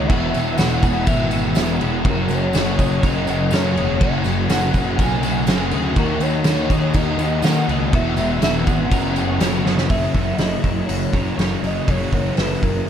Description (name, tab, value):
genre	rock, shoegaze and dream pop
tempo	122 BPM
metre	4/4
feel	straight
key	F# mixolydian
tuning	A4 = 439 Hz
part	warm velvety synth lead	melody	0.0-12.9 s	A#4 to G#5	-27 LUFS	equal	chorus, analog delay
part	string machine, violins	sustained chords	0.0-12.9 s	E4 to E6	-34 LUFS	right 1 dB	ensemble chorus
part	twelve-string electric guitar	arpeggios	0.0-12.9 s	E4 to C#5	-32 LUFS	left 6 dB	lush chorus, analog delay
part	crunchy overdriven guitar	riff	0.0-12.9 s	E2 to F#4	-25 LUFS	right 10 dB	reverse reverb
part	thick fuzz guitar	riff	0.0-12.9 s	E2 to D#4	-23 LUFS	left 9 dB	distortion, lush chorus
part	fuzz picked electric bass	bass	0.0-12.8 s	E1 to D#3	-23 LUFS	equal	overdrive
part	loose indie drum kit	drums	0.1-12.8 s	crash cymbal, hi-hat, kick drum, snare drum	-21 LUFS	equal	none
part	tambourine	percussion	0.3-9.7 s	none	-39 LUFS	right 11 dB	none
room	little or no reverb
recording	dark, warm production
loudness	-16 LUFS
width	side -9 dB against mid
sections	0.0-9.9 A section; 9.9-12.9 B section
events	drum fill 9.7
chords	0.1 Esus2; 2.1 F#add9; 6.0 D#m7; 7.9 Esus2; 8.9 F#sus4; 9.9 F#7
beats	| 0.10 0.59 1.07 1.56 | 2.05 2.54 3.03 3.52 | 4.01 4.50 4.99 5.47 | 5.96 6.46 6.95 7.44 | 7.93 8.42 8.91 9.41 | 9.90 10.40 10.89 11.39 | 11.89 12.39 12.89